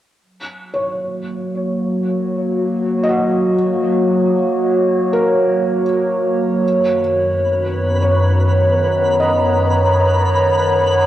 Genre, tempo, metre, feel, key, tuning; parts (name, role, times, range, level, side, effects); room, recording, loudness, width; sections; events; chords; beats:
ambient; free time; F# major; A4 = 438 Hz
warbly tape-like pad; sustained chords; 1.0-11.1 s; F#2 to A#5; -14 LUFS; equal; chorus, built-in reverb, phaser
felt-muted upright piano; arpeggios; 0.7-11.1 s; A#4 to F#5; -24 LUFS; equal; analog delay
twinkling granular texture; texture; 7.4-11.1 s; B4; -23 LUFS; equal; built-in reverb
wet spring reverb, RT60 2.0 s; home recording on cassette; -14 LUFS; side -13 dB against mid
0.2-11.1 A section
filter sweep on ambient pad 0.2-11.1
0.2 F#; 6.6 Bmaj9/F#
free time